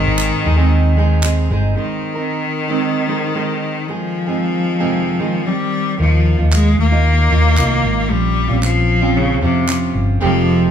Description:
acoustic pop; 114 BPM; 4/4; straight; A4 = 440 Hz
bright cello; second line; 0.0-10.7 s; C3 to Bb3; -19 LUFS; left 4 dB
fingerpicked steel-string acoustic guitar; accompaniment; 0.0-10.7 s; F2 to Bb4; -20 LUFS; right 6 dB
hollow-body short-scale fingered electric bass; bass; 0.0-1.7, 6.0-10.7 s; F1 to F2; -15 LUFS; equal
group handclap; percussion; 0.2-1.4, 6.5-9.8 s; -24 LUFS; right 3 dB
moderate large studio reverb, RT60 1.1 s; band playing live in one room; -14 LUFS; side -8 dB against mid
0.0-1.8 A section; 1.8-10.2 B section
0.0 Ab; 1.8 Abadd9; 3.9 Fm7; 6.0 Ebsus2; 8.1 Bbmadd9

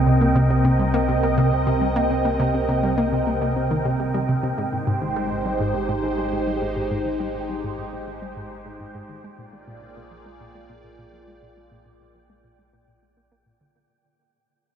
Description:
ambient, sequencer-driven space music; 103 BPM; 4/4; straight; A4 = 439 Hz
phased analog pad; sustained chords; 0.0-13.9 s; C3 to Eb5; -23 LUFS; right 1 dB; phaser, chorus
warm sub bass; bass; 0.0-13.9 s; Ab1 to C2; -30 LUFS; equal
wind-like tuned noise texture; texture; 0.0-13.9 s; G5; -30 LUFS; right 2 dB; built-in reverb, analog chorus
analog pluck; riff; 0.1-13.9 s; Ab2 to Bb3; -25 LUFS; equal; chorus, tape echo
wet huge ambient reverb, RT60 7.7 s; dreamy mix soaked in reverb; -20 LUFS; side -8 dB against mid
0.0-13.9 A section
fade-out 0.0-13.9; filter sweep on synth arpeggio sound 0.0-13.9
0.0 Cm7; 4.6 Abmaj7; 9.2 Bb7

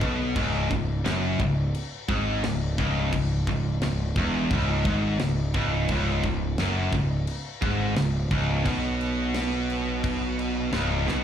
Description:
heavy metal; 87 BPM; 4/4; straight; C# minor; A4 = 438 Hz
high-gain distorted guitar; riff; 0.0-11.2 s; C#2 to B2; -26 LUFS; equal; distortion, slapback echo
fuzz picked electric bass; bass; 0.0-11.2 s; C#1 to B1; -28 LUFS; equal; overdrive
tight metal drum kit; drums; 0.0-11.2 s; crash cymbal, kick drum, snare drum; -32 LUFS; equal
light reverb; live gig heard through the venue's PA, club reverb; -23 LUFS; side -9 dB against mid
0.0-11.2 A section
drum fill 11.1
0.0 C#5

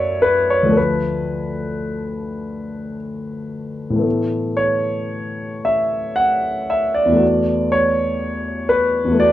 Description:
classical, impressionist solo piano; 53-63 BPM; 3/4; rubato; A major; A4 = 440 Hz
warm grand piano; solo; 0.0-9.3 s; D2 to F#5; -17 LUFS; left 1 dB
light reverb; dark, warm production; -16 LUFS; side -13 dB against mid
0.0-9.3 A section
0.0 F#m9; 0.8 Dm6; 4.1 Aadd9

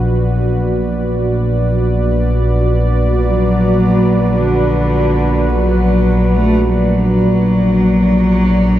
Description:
dark ambient drone; free time; A4 = 439 Hz
dark analog pad; sustained chords; 0.0-8.8 s; F#4 to D5; -18 LUFS; right 1 dB; chorus, shimmer reverb
analog drone; drone; 0.0-8.8 s; Bb1; -15 LUFS; equal; chorus
bronze singing bowl; texture; 0.0-8.8 s; D4; -37 LUFS; left 8 dB
dark cello; melody; 3.2-8.8 s; D3 to A3; -14 LUFS; left 1 dB; dub echo
moderate spring reverb, RT60 2.4 s; echo-heavy mix; -11 LUFS; side -12 dB against mid
0.0-8.8 A section
0.0 D

